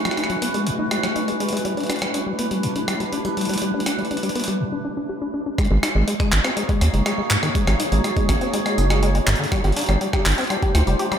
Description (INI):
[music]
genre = IDM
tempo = 122 BPM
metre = 4/4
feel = straight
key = unclear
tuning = A4 = 441 Hz
[part]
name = granular cloud pad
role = sustained chords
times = 0.0-11.2 s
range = A3 to Db5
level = -26 LUFS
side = right 1 dB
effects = built-in reverb, vintage 12-bit sampler grit
[part]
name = deep acid bass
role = arpeggios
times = 0.0-11.2 s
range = G2 to G4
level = -24 LUFS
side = left 2 dB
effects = diffuse ambient delay
[part]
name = jungle sampler-style drum kit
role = drums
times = 0.1-11.2 s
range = handclaps, hi-hat, rim click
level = -25 LUFS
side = right 1 dB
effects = overdrive, diffuse ambient delay
[part]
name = electronic kick drum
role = drums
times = 5.6-10.7 s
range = none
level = -23 LUFS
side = equal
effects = overdrive
[part]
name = round analog bass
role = bass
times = 5.7-11.0 s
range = F1 to Eb2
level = -18 LUFS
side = equal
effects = none
[sound]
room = moderate lush hall reverb, RT60 1.9 s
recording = dreamy mix soaked in reverb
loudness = -19 LUFS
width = side -8 dB against mid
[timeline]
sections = 0.0-5.6 A section; 5.6-11.2 B section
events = filter sweep on acid bass 0.0-5.6; break 4.6-5.6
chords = 0.0 B9sus4; 1.6 A9sus4; 5.6 Ab9sus4; 9.3 G9sus4